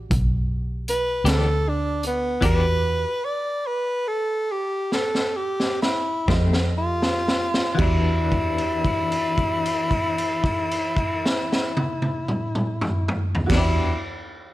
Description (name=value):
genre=slow blues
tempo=38-52 BPM (dotted quarters)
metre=12/8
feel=straight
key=E minor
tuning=A4 = 438 Hz
part: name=dark upright piano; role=accompaniment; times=0.0-13.9 s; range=F#4 to Eb5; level=-34 LUFS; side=right 5 dB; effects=none
part: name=vintage muted fingered electric bass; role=bass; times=0.0-13.9 s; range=B1 to F2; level=-23 LUFS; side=equal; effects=none
part: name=raw garage drum kit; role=drums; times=0.1-13.8 s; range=crash cymbal, hi-hat, kick drum, snare drum, toms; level=-24 LUFS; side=equal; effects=none
part: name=breathy tenor saxophone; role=melody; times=0.9-14.0 s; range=B3 to D5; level=-24 LUFS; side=equal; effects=none
part: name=semi-hollow electric guitar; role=accompaniment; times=1.3-14.0 s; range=F2 to G4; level=-30 LUFS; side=left 4 dB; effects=tremolo
room=light reverb, small room reverb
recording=dark, warm production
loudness=-20 LUFS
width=side -16 dB against mid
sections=0.0-7.8 A section; 7.8-14.1 B section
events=tenor saxophone solo 0.0-7.8; slowing down 0.9-7.8; drum fill 4.9-7.8; held note 7.8-13.5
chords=0.0 Em7; 6.3 F7; 7.8 Em7